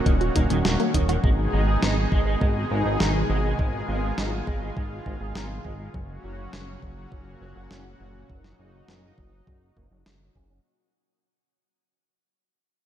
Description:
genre	synthwave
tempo	102 BPM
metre	4/4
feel	straight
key	unclear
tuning	A4 = 439 Hz
part	lush unison pad	sustained chords	0.0-10.6 s	A#2 to G#4	-30 LUFS	equal	chorus, sidechain pumping, shimmer reverb
part	wide unison pluck	arpeggios	0.1-1.2 s	F#3 to F#4	-30 LUFS	equal	ping-pong delay, shimmer reverb
part	electric guitar at the edge of break-up	riff	0.1-10.6 s	D#3 to G#4	-34 LUFS	right 4 dB	analog chorus, low-pass filter, ping-pong delay, shimmer reverb
part	chorused synth bass	bass	0.1-10.6 s	D#1 to G#1	-27 LUFS	equal	none
part	clean 12-bit digital drum machine	drums	0.1-10.2 s	hi-hat, snare drum	-29 LUFS	equal	gated reverb
part	electronic kick drum	drums	0.1-10.5 s	none	-24 LUFS	equal	none
room	light reverb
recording	none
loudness	-22 LUFS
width	side -10 dB against mid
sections	0.0-10.6 A section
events	fade-out 0.0-10.6; filter sweep on clean electric guitar 0.0-10.6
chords	0.0 D#m; 1.2 G#m; 5.9 F#

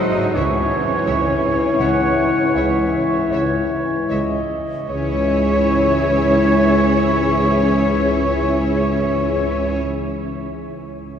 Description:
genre	classical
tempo	36-44 BPM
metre	3/4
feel	rubato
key	C# minor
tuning	A4 = 439 Hz
part	rich studio violin section	melody	0.0-9.8 s	C#5 to D#5	-34 LUFS	left 3 dB	none
part	hollow concert flute	second line	0.0-9.8 s	C#5 to D#5	-26 LUFS	left 3 dB	none
part	warm clarinet	second line	0.0-9.8 s	B#4 to F#5	-26 LUFS	left 1 dB	none
part	warm oboe	second line	0.0-9.8 s	C#5 to D#5	-28 LUFS	right 1 dB	none
part	dark bassoon	accompaniment	0.0-9.8 s	E3 to F#3	-24 LUFS	left 2 dB	none
part	bright trombone section	sustained chords	0.0-9.8 s	G#2 to F#3	-29 LUFS	right 1 dB	none
part	mellow French horn section	sustained chords	0.0-9.8 s	G#3 to G#4	-27 LUFS	left 4 dB	none
part	bright trumpet	stabs	0.0-9.8 s	B#4 to C#5	-28 LUFS	right 2 dB	none
part	rich studio cello section	bass	0.0-9.8 s	C#4 to D#4	-25 LUFS	right 1 dB	none
part	mellow tuba	bass	0.3-9.8 s	C#2	-25 LUFS	equal	none
part	rich studio violin section	second line	0.4-9.8 s	C#5 to E5	-31 LUFS	left 2 dB	none
part	clear studio viola section	accompaniment	0.4-9.8 s	G#3 to G#4	-29 LUFS	equal	none
part	rich studio double bass section	bass	0.4-9.8 s	C#2	-25 LUFS	right 2 dB	none
room	wet cathedral reverb, RT60 6.2 s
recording	heard from further back in the room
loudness	-15 LUFS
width	side -8 dB against mid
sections	0.0-4.9 A section; 4.9-9.5 B section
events	slowing down 0.0-4.9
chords	0.4 C#m

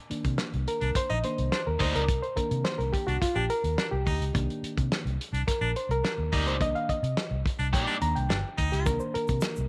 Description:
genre	funk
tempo	106 BPM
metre	4/4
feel	straight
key	C minor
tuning	A4 = 440 Hz
part	reed electric piano	stabs	0.1-9.7 s	Eb3 to Bb5	-33 LUFS	equal	none
part	vintage muted fingered electric bass	bass	0.1-9.7 s	G1 to C3	-32 LUFS	equal	none
part	warm soul drum kit	drums	0.1-9.6 s	hi-hat, kick drum, snare drum	-33 LUFS	equal	none
part	breathy baritone saxophone	second line	0.8-8.9 s	D4 to Eb4	-37 LUFS	equal	none
part	biting overdriven guitar	accompaniment	1.8-2.0, 6.3-8.0 s	Bb3 to D5	-35 LUFS	equal	none
part	tube shaker	percussion	8.9-9.7 s	none	-50 LUFS	equal	none
room	light reverb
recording	none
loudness	-28 LUFS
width	mono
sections	0.0-9.7 A section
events	reed electric piano solo 0.0-9.7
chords	0.0 Cm9

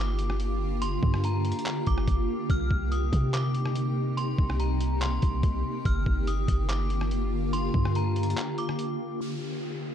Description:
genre	hip hop, atmospheric cloud-rap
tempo	143 BPM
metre	4/4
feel	half-time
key	C minor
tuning	A4 = 440 Hz
part	metallic FM bell	melody	0.0-9.9 s	Bb5 to F6	-36 LUFS	left 1 dB	chorus, low-pass filter, slapback echo
part	granular cloud pad	sustained chords	0.0-9.9 s	C3 to G4	-31 LUFS	equal	built-in reverb, sidechain pumping, low-pass filter
part	warm 808-style bass	bass	0.0-8.3 s	G1 to C3	-28 LUFS	equal	none
part	trip hop sampler-style drum kit	drums	0.2-8.9 s	handclaps, hi-hat, kick drum, rim click	-30 LUFS	equal	none
part	downlifter	sound effects	9.2-9.9 s	none	-42 LUFS	equal	none
room	digital ambience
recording	dark, warm production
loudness	-25 LUFS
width	side -9 dB against mid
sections	0.0-9.2 A section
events	break 8.4-9.2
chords	0.0 Gm7; 2.5 Cm7; 5.9 Gm7; 9.2 Cm7

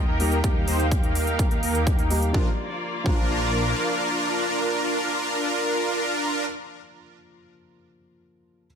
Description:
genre	EDM, festival progressive house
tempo	126 BPM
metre	4/4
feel	straight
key	Bb major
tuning	A4 = 440 Hz
part	felt-muted upright piano	accompaniment	0.0-8.7 s	F3 to G4	-32 LUFS	equal	sidechain pumping, ping-pong delay
part	rich symphonic string section	sustained chords	0.0-5.7 s	Bb3 to G5	-31 LUFS	left 1 dB	sidechain pumping
part	supersaw chords	riff	0.0-6.4 s	Bb3 to C5	-25 LUFS	equal	wide subtle chorus, sidechain pumping, low-pass filter, ping-pong delay
part	wide detuned saw bass	bass	0.0-3.7 s	Bb1 to Eb2	-26 LUFS	equal	chorus, sidechain pumping
part	electronic hi-hat	drums	0.2-2.3 s	none	-33 LUFS	equal	none
part	electronic kick drum	drums	0.4-3.2 s	none	-23 LUFS	equal	none
room	light reverb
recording	none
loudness	-21 LUFS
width	side -7 dB against mid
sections	0.0-2.3 A section; 2.3-6.2 B section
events	filter sweep on supersaw synth 0.0-2.3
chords	0.0 Eb; 2.3 Bb

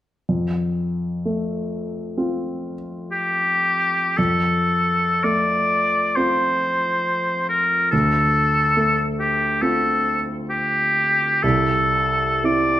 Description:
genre	classical, romantic duo for oboe and grand piano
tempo	54-71 BPM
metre	4/4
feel	rubato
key	F major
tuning	A4 = 440 Hz
part	dark concert grand piano	accompaniment	0.3-12.8 s	C2 to F4	-23 LUFS	equal	none
part	clear oboe	melody	3.1-12.8 s	G4 to D5	-18 LUFS	equal	none
room	moderate recital hall reverb, RT60 1.3 s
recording	none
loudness	-18 LUFS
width	side -13 dB against mid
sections	0.3-4.2 A section; 4.2-12.8 B section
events	none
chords	0.3 F; 7.9 Dm7; 11.4 Am/C

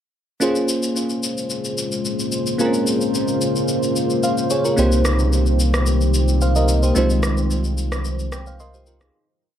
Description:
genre	amapiano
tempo	110 BPM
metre	4/4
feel	straight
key	Bb dorian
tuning	A4 = 440 Hz
part	bell-like FM electric piano	accompaniment	0.4-9.3 s	Ab3 to C6	-22 LUFS	right 1 dB	chorus, analog delay
part	deep dark ambient pad	sustained chords	1.4-9.1 s	Db3 to C5	-23 LUFS	left 2 dB	chorus, built-in reverb
part	electronic shaker and rim click	drums	0.4-9.1 s	none	-27 LUFS	left 2 dB	none
part	warm sub bass	bass	4.8-9.1 s	C2	-18 LUFS	equal	none
room	light reverb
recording	echo-heavy mix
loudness	-17 LUFS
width	side -10 dB against mid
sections	0.4-9.1 breakdown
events	fade-out 7.0-9.1; FM electric piano fill 8.3-9.1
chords	0.4 Bbm9; 4.8 Cm7; 7.0 Fm7/C

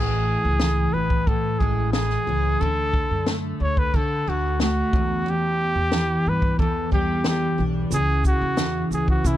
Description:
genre	acoustic pop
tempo	90 BPM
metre	4/4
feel	straight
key	A major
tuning	A4 = 440 Hz
part	warm trumpet	melody	0.0-9.4 s	E4 to C#5	-25 LUFS	equal	plate reverb, ping-pong delay
part	picked steel-string acoustic guitar	accompaniment	0.0-9.4 s	E2 to E4	-25 LUFS	equal	double-tracked left and right
part	upright bass	bass	0.0-9.4 s	A1 to E3	-26 LUFS	equal	none
part	compact cocktail drum kit	drums	0.6-9.4 s	kick drum, shaker, snare drum	-24 LUFS	equal	none
room	light reverb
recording	dark, warm production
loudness	-20 LUFS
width	side -13 dB against mid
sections	0.0-9.4 A section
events	none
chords	0.0 Amaj7; 2.6 D; 4.9 Em7; 7.9 C#m

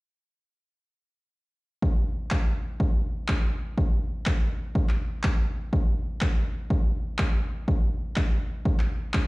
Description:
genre	deep house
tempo	123 BPM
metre	4/4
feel	swing 60% on 16ths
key	none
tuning	none
part	electronic kick drum	drums	1.8-9.3 s	none	-24 LUFS	equal	none
part	electronic handclaps	drums	2.3-9.3 s	none	-33 LUFS	equal	none
room	little or no reverb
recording	played on a big sound system in a bare room, stone room reverb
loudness	-24 LUFS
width	side -23 dB against mid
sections	1.8-9.3 A section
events	none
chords	none

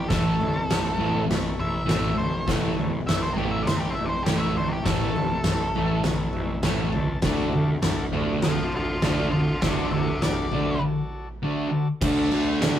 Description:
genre	garage rock duo or trio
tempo	101 BPM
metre	4/4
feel	straight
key	A major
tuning	A4 = 440 Hz
part	octave-fuzz lead guitar	melody	0.0-10.8 s	G4 to A5	-29 LUFS	equal	distortion
part	fuzz picked electric bass	bass	0.0-12.8 s	A1 to D2	-31 LUFS	equal	overdrive
part	combo organ	sustained chords	0.1-12.8 s	E4 to A5	-37 LUFS	left 2 dB	none
part	thick fuzz guitar	riff	0.1-12.8 s	A2 to D4	-25 LUFS	right 1 dB	distortion
part	oversized low-tuned drum kit	drums	0.1-12.8 s	crash cymbal, kick drum, ride cymbal, snare drum, toms	-26 LUFS	equal	none
room	moderate small room reverb, RT60 0.6 s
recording	rough rehearsal-room recording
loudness	-22 LUFS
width	side -10 dB against mid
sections	0.0-12.0 A section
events	transistor combo organ fill 6.0-7.2; break 10.8-12.0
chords	0.0 A; 7.2 D

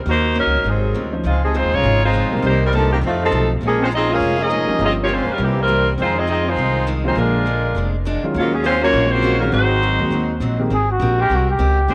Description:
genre	jazz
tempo	203 BPM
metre	4/4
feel	swing 61% on 8ths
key	Db major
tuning	A4 = 440 Hz
part	upright bass	bass	0.0-11.9 s	F1 to F2	-23 LUFS	equal	none
part	warm saxophone section	melody	0.1-10.4 s	Eb3 to F5	-21 LUFS	equal	tape echo
part	picked steel-string acoustic guitar	accompaniment	0.1-11.9 s	F2 to Bb4	-31 LUFS	equal	none
part	mellow trombone section	second line	0.7-10.4 s	Ab2 to F4	-28 LUFS	equal	none
part	warm grand piano	accompaniment	1.1-10.7 s	D3 to C5	-28 LUFS	equal	none
part	mellow trumpet	melody	10.7-11.9 s	Gb4 to Ab4	-20 LUFS	equal	none
part	clear saxophone section	sustained chords	11.2-11.9 s	Ab3 to C5	-30 LUFS	equal	none
room	light reverb, small room ambience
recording	none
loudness	-18 LUFS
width	mono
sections	0.0-1.2 A section; 1.2-10.7 B section; 10.7-11.9 C section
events	trumpet solo 10.7-11.9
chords	0.1 Ebm7; 0.6 Ab6; 1.2 Dbmaj9; 2.4 Cm7; 3.0 F7; 3.6 Bbm7; 4.8 Gm7b5; 5.4 C7; 6.0 Fm7; 7.2 Bb7; 8.3 Ebm11; 9.5 Ab7; 10.7 Abmaj9

